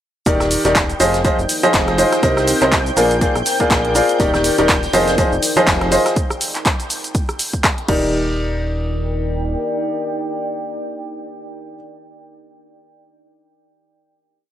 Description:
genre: piano house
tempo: 122 BPM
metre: 4/4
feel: swing 57% on 16ths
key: Eb major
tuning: A4 = 445 Hz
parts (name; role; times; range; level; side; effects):
- analog string pad; sustained chords; 0.3-7.9 s; G5 to G6; -27 LUFS; equal; ensemble chorus, sidechain pumping
- bright upright piano; riff; 0.3-11.8 s; Eb3 to Eb5; -17 LUFS; equal; sidechain pumping, analog delay
- fat analog bass; bass; 0.3-9.6 s; Eb1 to C2; -23 LUFS; equal; tube saturation, sidechain pumping
- electronic kick drum; drums; 0.3-8.0 s; none; -20 LUFS; equal; overdrive, studio reverb
- jazz brush drum kit; drums; 0.3-6.2 s; hi-hat, snare drum; -30 LUFS; left 1 dB; none
- punchy analog drum machine; drums; 0.3-8.0 s; cabasa, crash cymbal, handclaps, hi-hat, rim click; -20 LUFS; equal; studio reverb
- deep dark ambient pad; texture; 1.4-12.2 s; Eb4 to G5; -25 LUFS; left 1 dB; chorus, built-in reverb, sidechain pumping
- tambourine and congas; percussion; 4.2-6.1 s; none; -30 LUFS; left 2 dB; none
room: light reverb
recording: transformer saturation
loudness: -14 LUFS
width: side -11 dB against mid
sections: 0.3-8.1 drop; 8.1-12.1 final chord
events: drop 0.3-8.1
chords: 0.3 Ebmaj7; 1.0 Fm7; 2.2 Cm7; 3.0 Bb7; 4.2 Ebmaj7; 4.9 Fm7; 6.2 N.C.; 7.9 Ebmaj7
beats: | 0.26 0.75 1.25 1.74 | 2.23 2.72 3.21 3.71 | 4.20 4.69 5.18 5.67 | 6.16 6.66 7.15 7.64 | 8.13 8.62 9.12 9.61 | 10.10 10.59 11.08 11.57

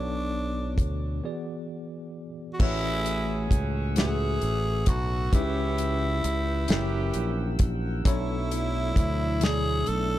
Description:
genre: slow six-eight R&B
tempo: 44 BPM (dotted quarters)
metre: 6/8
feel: straight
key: A major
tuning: A4 = 440 Hz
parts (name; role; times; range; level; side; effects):
- growling tenor saxophone; melody; 0.0-10.2 s; D4 to A4; -31 LUFS; equal; ping-pong delay
- tine electric piano; accompaniment; 0.0-10.2 s; A2 to E5; -33 LUFS; left 1 dB; overdrive, medium stereo tremolo
- fingered electric bass; bass; 0.0-10.2 s; F#1 to D2; -29 LUFS; equal; none
- damped 70s drum kit; drums; 0.8-10.1 s; crash cymbal, hi-hat, kick drum, snare drum; -24 LUFS; equal; none
- tonewheel organ; sustained chords; 2.6-10.2 s; A3 to E6; -41 LUFS; equal; slow rotary speaker
- warm horn section; stabs; 2.6-10.2 s; E3 to G#4; -38 LUFS; right 5 dB; none
room: little or no reverb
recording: none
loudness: -24 LUFS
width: side -14 dB against mid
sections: 0.0-2.6 A section; 2.6-10.2 B section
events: break 1.2-2.6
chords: 0.0 Bm7; 1.2 E7; 2.6 A6; 5.3 C#m7b5; 6.7 F#7b9; 8.1 Bm11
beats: 1.23 | 2.60 3.96 | 5.32 6.69 | 8.05 9.41

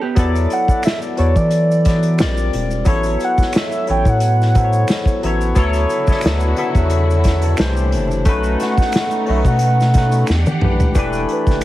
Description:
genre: R&B, neo-soul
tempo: 89 BPM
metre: 4/4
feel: swing 55% on 16ths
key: E dorian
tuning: A4 = 440 Hz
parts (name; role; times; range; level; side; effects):
- barky tine electric piano; accompaniment; 0.2-11.6 s; E3 to A5; -20 LUFS; left 2 dB; wide subtle chorus
- round analog bass; bass; 0.2-11.6 s; E1 to E3; -17 LUFS; equal; none
- unplugged drum kit; drums; 0.2-11.6 s; hi-hat, kick drum, snare drum, toms; -18 LUFS; equal; none
- maracas and finger snaps; percussion; 0.2-11.6 s; none; -34 LUFS; right 4 dB; none
- warm velvety synth lead; melody; 0.5-11.6 s; B4 to G5; -21 LUFS; right 2 dB; chorus
- warm studio string section; sustained chords; 5.6-10.9 s; Bb2 to F#5; -26 LUFS; equal; none
room: light reverb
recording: heavily compressed radio sound, vinyl crackle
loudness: -14 LUFS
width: side -15 dB against mid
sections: 0.2-11.0 A section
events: stop 0.0; drum fill 10.3-11.0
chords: 0.2 Esus2; 2.2 A#add9; 2.9 A69; 5.6 Dmaj9; 7.6 C9; 8.3 B7; 10.3 Em9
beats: | 0.17 0.84 1.52 2.19 | 2.86 3.54 4.21 4.89 | 5.56 6.24 6.91 7.58 | 8.26 8.93 9.61 10.28 | 10.95 11.63

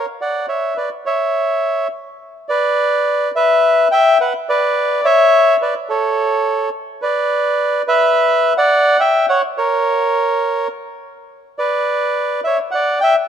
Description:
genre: tango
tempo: 105 BPM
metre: 4/4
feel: rubato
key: B minor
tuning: A4 = 439 Hz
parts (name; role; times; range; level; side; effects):
- bandoneon; solo; 0.0-13.2 s; A4 to G5; -14 LUFS; equal; none
room: moderate plate reverb, RT60 3.0 s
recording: rough home demo mix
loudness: -14 LUFS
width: side -8 dB against mid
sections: 0.0-2.5 A section; 2.5-13.3 B section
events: none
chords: 0.2 Bm (rootless); 1.3 N.C.; 3.6 E5; 4.8 Bmadd9; 5.9 N.C.; 8.1 E5; 9.3 A#m; 11.6 Bm; 12.7 E5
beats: | 0.18 0.75 1.32 1.90 | 2.48 3.06 3.63 4.19 | 4.75 5.32 5.88 6.44 | 7.01 7.57 8.13 8.70 | 9.27 9.84 10.42 11.00 | 11.58 12.15 12.73

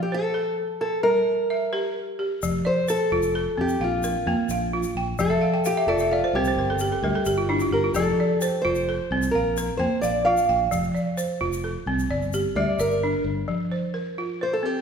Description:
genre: west african traditional, West African string and xylophone music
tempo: 87 BPM (dotted quarters)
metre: 12/8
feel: straight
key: F major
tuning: A4 = 439 Hz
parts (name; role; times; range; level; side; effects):
- fingerpicked old ladder-braced acoustic guitar; melody; 0.0-14.8 s; F4 to F5; -24 LUFS; equal; none
- balafon; arpeggios; 0.0-14.8 s; F3 to G5; -25 LUFS; right 1 dB; none
- fingered electric bass; bass; 2.4-13.4 s; F1 to F2; -30 LUFS; left 1 dB; none
- tube shaker; percussion; 2.4-13.0 s; none; -39 LUFS; left 6 dB; none
room: wet recital hall reverb, RT60 1.5 s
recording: recorded in a church or concert hall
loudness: -21 LUFS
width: side -6 dB against mid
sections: 0.0-2.4 A section; 2.4-13.5 B section; 13.5-14.8 C section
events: steel-string acoustic guitar solo 2.4-13.5; balafon fill 5.3-8.0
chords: 0.0 F (rootless); 1.0 Gm; 2.4 F; 3.8 Bb5; 5.2 F; 6.6 G5; 8.0 F; 9.3 Bb5; 10.7 F; 12.1 Gm; 13.5 F5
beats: 0.35 1.04 1.73 | 2.42 3.11 3.81 4.50 | 5.19 5.88 6.57 7.26 | 7.95 8.64 9.34 10.03 | 10.72 11.41 12.10 12.79 | 13.49 14.18

